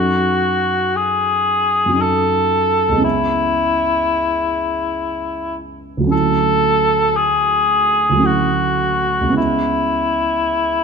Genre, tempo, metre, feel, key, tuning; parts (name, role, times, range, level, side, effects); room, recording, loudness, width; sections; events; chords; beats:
classical, impressionist duo for cor anglais and grand piano; 53-60 BPM; 3/4; rubato; F# minor; A4 = 440 Hz
mellow cor anglais; melody; 0.0-10.8 s; E4 to A4; -16 LUFS; left 1 dB
dark concert grand piano; accompaniment; 0.0-10.8 s; C#2 to A4; -20 LUFS; right 2 dB
moderate scoring stage reverb, RT60 1.7 s; close, detailed microphones; -14 LUFS; side -6 dB against mid
0.0-10.8 A section
0.0 F#m6; 3.0 C#m7
0.96 2.00 | 3.04 4.08 5.09 | 6.12 7.16 8.25 | 9.37 10.49